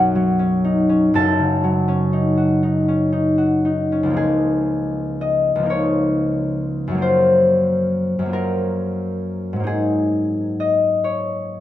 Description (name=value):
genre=classical, solo harp piece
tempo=38-48 BPM (dotted quarters)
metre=6/8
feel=rubato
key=Db major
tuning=A4 = 440 Hz
part: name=concert harp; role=solo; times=0.0-11.6 s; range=Gb1 to Eb6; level=-16 LUFS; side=left 1 dB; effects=none
room=little or no reverb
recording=close, detailed microphones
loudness=-16 LUFS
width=side -12 dB against mid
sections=0.0-4.2 A section; 4.2-11.6 B section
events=none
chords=0.0 Cbadd9; 1.1 Gbm6; 4.2 Db69; 7.0 Gbmaj7; 9.7 Ab11